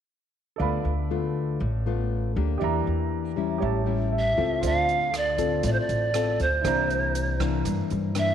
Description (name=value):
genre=bossa nova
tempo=119 BPM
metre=4/4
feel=straight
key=D dorian, D minor from 4.6 s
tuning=A4 = 440 Hz
part: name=nylon-string guitar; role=accompaniment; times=0.6-8.3 s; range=G2 to A4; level=-28 LUFS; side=left 9 dB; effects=none
part: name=warm grand piano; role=accompaniment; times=0.6-8.3 s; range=E4 to B5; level=-33 LUFS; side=right 12 dB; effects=none
part: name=upright bass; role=bass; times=0.6-8.3 s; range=A1 to G2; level=-28 LUFS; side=right 1 dB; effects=none
part: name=polished pan flute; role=melody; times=4.2-8.3 s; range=C5 to F5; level=-25 LUFS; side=right 2 dB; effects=none
part: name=swinging big-band drum kit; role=drums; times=4.6-8.3 s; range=hi-hat, kick drum, rim click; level=-35 LUFS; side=right 4 dB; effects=none
room=moderate echo chamber reverb, RT60 1.9 s, small room ambience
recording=1960s-style stereo with parts hard left and right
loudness=-23 LUFS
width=side -9 dB against mid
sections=0.6-4.6 A section; 4.6-8.3 B section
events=grand piano fill 3.9-4.6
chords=0.6 Dm6; 2.6 Em7b5; 3.6 A7; 4.6 Dm7; 6.6 C9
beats=| 0.59 1.10 1.60 2.10 | 2.61 3.11 3.62 4.12 | 4.63 5.13 5.63 6.14 | 6.64 7.14 7.65 8.15